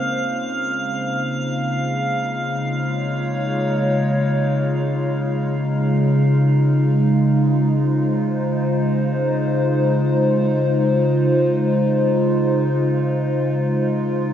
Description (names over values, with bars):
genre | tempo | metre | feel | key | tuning
ambient | free time | none | none | Db major | A4 = 440 Hz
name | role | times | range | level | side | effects
warbly tape-like pad | sustained chords | 0.0-14.3 s | Db3 to Db5 | -17 LUFS | equal | chorus, built-in reverb, phaser
muted felt-like synth keys | arpeggios | 0.0-6.2 s | Bb3 to Db4 | -32 LUFS | right 1 dB | chorus, diffuse ambient delay
drifting glass-harmonics texture | texture | 0.0-6.2 s | F5 | -27 LUFS | equal | chorus, built-in reverb
room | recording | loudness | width
wet cathedral reverb, RT60 6.4 s | nothing above 7.5 kHz | -17 LUFS | side -9 dB against mid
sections
0.0-6.2 A section; 6.2-14.3 B section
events
none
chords
0.0 Dbmaj7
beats
free time